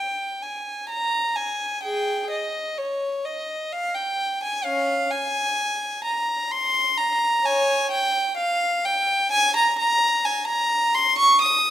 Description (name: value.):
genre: classical, baroque-style suite movement for unaccompanied violin.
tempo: 64 BPM.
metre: 3/4.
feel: rubato.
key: Ab major.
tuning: A4 = 440 Hz.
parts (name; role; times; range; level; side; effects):
rich violin; solo; 0.0-11.7 s; Db4 to Eb6; -20 LUFS; equal; none.
room: moderate recital hall reverb, RT60 1.5 s.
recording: none.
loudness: -20 LUFS.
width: side -11 dB against mid.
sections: 0.0-11.7 A section.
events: none.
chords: none.